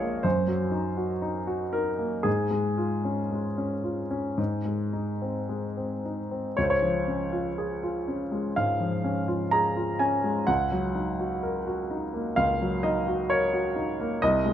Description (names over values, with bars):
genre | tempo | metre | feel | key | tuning
classical, romantic character piece for solo piano | 54-66 BPM | 4/4 | rubato | Db major | A4 = 440 Hz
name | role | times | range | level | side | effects
clear grand piano | solo | 0.0-14.5 s | Bb1 to Bb5 | -25 LUFS | equal | none
room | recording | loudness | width
moderate concert hall reverb, RT60 2.0 s | close, detailed microphones | -25 LUFS | side -10 dB against mid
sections
0.0-14.5 A section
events
none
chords
0.2 Ebm/Gb; 2.3 Db/Ab; 4.4 Ab; 6.6 Db; 10.5 Ebm7/Db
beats
0.25 1.23 | 2.26 3.32 4.38 5.49 | 6.56 7.58 8.57 9.52 | 10.48 11.43 12.37 13.30 | 14.21